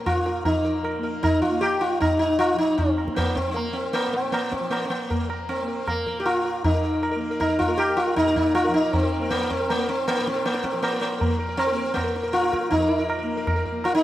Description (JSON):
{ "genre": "indian classical, Hindustani", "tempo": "157 BPM", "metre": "4/4", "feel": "straight", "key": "unclear", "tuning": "A4 = 440 Hz", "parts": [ { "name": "sitar", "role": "melody", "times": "0.0-14.0 s", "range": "Bb3 to Bb4", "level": "-22 LUFS", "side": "equal", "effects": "none" }, { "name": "tanpura", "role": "drone", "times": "0.0-14.0 s", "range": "Bb2 to Bb3", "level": "-35 LUFS", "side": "equal", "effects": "stereo widening" }, { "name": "tabla", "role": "percussion", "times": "0.1-14.0 s", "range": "none", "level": "-28 LUFS", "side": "equal", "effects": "none" } ], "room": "moderate lush hall reverb, RT60 2.9 s", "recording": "rough home demo mix", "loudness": "-21 LUFS", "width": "side -14 dB against mid", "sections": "0.0-6.6 A section; 6.6-14.0 B section", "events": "speeding up 0.0-14.0", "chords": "none", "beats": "0.07 | 0.46 0.85 1.24 1.63 | 2.02 2.40 2.79 3.18 | 3.57 3.95 4.34 4.72 | 5.11 5.50 5.88 6.26 | 6.65 7.03 7.41 7.79 | 8.18 8.56 8.94 9.32 | 9.70 10.08 10.46 10.83 | 11.21 11.59 11.97 12.34 | 12.72 13.10 13.47 13.85" }